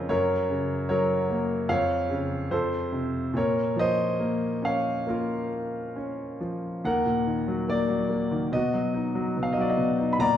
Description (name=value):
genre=classical, lyrical solo piano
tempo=67-75 BPM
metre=4/4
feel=rubato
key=Bb minor, Eb harmonic minor from 6.8 s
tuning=A4 = 440 Hz
part: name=warm grand piano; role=solo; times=0.0-10.4 s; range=Eb2 to B5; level=-24 LUFS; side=left 1 dB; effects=none
room=moderate concert hall reverb, RT60 2.3 s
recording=minimal, uncompressed stereo recording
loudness=-24 LUFS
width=side -10 dB against mid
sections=0.0-6.8 A section; 6.8-10.4 B section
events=none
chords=0.1 Gb; 1.7 Db/F; 2.5 F; 3.3 Bbm; 6.8 Ebm; 8.5 B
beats=| 0.10 0.90 1.70 2.51 | 3.35 4.20 5.07 5.97 | 6.85 7.70 8.54 9.38 | 10.21